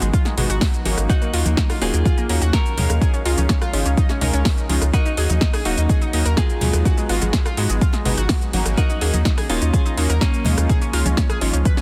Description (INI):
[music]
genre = progressive house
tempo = 125 BPM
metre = 4/4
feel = straight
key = Eb minor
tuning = A4 = 441 Hz
[part]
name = clean electric guitar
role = melody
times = 0.0-11.8 s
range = Bb3 to Bb4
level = -31 LUFS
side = equal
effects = delay
[part]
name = airy breathy pad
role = sustained chords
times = 0.0-11.8 s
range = Db3 to F5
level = -35 LUFS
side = equal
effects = none
[part]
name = analog pluck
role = arpeggios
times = 0.0-11.8 s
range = Ab3 to Cb5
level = -31 LUFS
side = equal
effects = chorus, sidechain pumping, dub echo
[part]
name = supersaw stab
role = stabs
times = 0.0-11.6 s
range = Gb3 to F5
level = -30 LUFS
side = equal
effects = sidechain pumping, dub echo
[part]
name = round analog bass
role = bass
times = 0.0-11.6 s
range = Eb1 to Ab2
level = -22 LUFS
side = equal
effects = sidechain pumping
[part]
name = deep house drum kit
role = drums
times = 0.0-11.8 s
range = hi-hat, rim click, shaker, snare drum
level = -28 LUFS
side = equal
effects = overdrive
[part]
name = electronic kick drum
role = drums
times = 0.1-11.8 s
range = none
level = -21 LUFS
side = equal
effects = overdrive
[part]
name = congas and bongos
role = percussion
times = 0.1-11.8 s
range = none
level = -30 LUFS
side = equal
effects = sidechain pumping on perc
[sound]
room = little or no reverb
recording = dense, heavily limited modern master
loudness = -19 LUFS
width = mono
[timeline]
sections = 0.0-11.8 A section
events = none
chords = 0.0 Abm7; 1.1 Ebm7; 3.0 Dbadd9; 4.9 Ebm7; 6.9 Abm7; 8.8 Ebm7; 10.7 Dbadd9